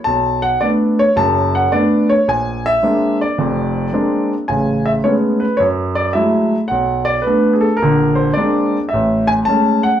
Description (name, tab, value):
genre	solo jazz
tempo	108 BPM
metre	4/4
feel	swing 68% on 8ths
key	unclear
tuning	A4 = 440 Hz
part	warm grand piano	solo	0.0-10.0 s	F1 to A5	-13 LUFS	equal	none
room	wet club reverb, RT60 0.5 s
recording	heard from further back in the room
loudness	-13 LUFS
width	side -10 dB against mid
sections	0.0-10.0 A section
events	none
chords	0.1 Bm7; 2.3 Bb9; 4.5 Amaj9; 5.6 F#m9; 6.7 Bm7; 7.8 Bb9; 8.9 Amaj7